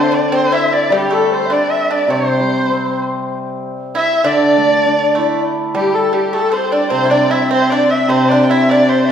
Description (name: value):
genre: chinese traditional, Chinese chamber ensemble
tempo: 100 BPM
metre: 4/4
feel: rubato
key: unclear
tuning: A4 = 440 Hz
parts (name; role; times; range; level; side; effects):
- dark erhu; melody; 0.0-9.1 s; G4 to G5; -17 LUFS; right 1 dB; none
- large dizi; second line; 0.0-9.1 s; G4 to E5; -18 LUFS; left 3 dB; none
- pipa; second line; 0.0-9.1 s; G3 to E4; -20 LUFS; right 2 dB; none
- hammered dulcimer; accompaniment; 0.0-9.1 s; C3 to E4; -17 LUFS; left 1 dB; none
room: wet scoring stage reverb, RT60 1.8 s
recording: heard from further back in the room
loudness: -12 LUFS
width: side -8 dB against mid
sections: 0.0-9.1 A section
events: none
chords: none